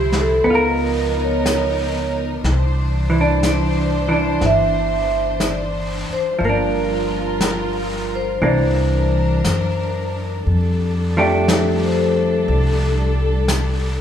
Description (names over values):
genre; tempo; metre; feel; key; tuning
jazz ballad; 60 BPM; 4/4; swing 69% on 8ths; F major from 10.5 s; A4 = 440 Hz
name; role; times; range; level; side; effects
vibraphone with medium mallets; melody; 0.0-12.4 s; G4 to E5; -22 LUFS; right 1 dB; none
vintage hollow-body jazz guitar; accompaniment; 0.0-14.0 s; D3 to Bb4; -21 LUFS; right 1 dB; none
warm studio string section; sustained chords; 0.0-14.0 s; E3 to C5; -24 LUFS; left 2 dB; none
upright bass; bass; 0.0-14.0 s; G1 to F#2; -21 LUFS; equal; none
vintage brush drum kit; drums; 0.1-14.0 s; brushed snare drum, hi-hat, snare drum; -26 LUFS; left 1 dB; none
room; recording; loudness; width
moderate large studio reverb, RT60 1.1 s; band playing live in one room; -16 LUFS; side -9 dB against mid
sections
0.0-10.5 A section; 10.5-14.0 B section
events
none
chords
0.5 Db13; 2.4 Cadd9; 6.4 Gm7; 8.4 C9; 10.5 F69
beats
0.47 1.46 | 2.45 3.43 4.42 5.41 | 6.41 7.41 8.41 9.44 | 10.46 11.47 12.48 13.48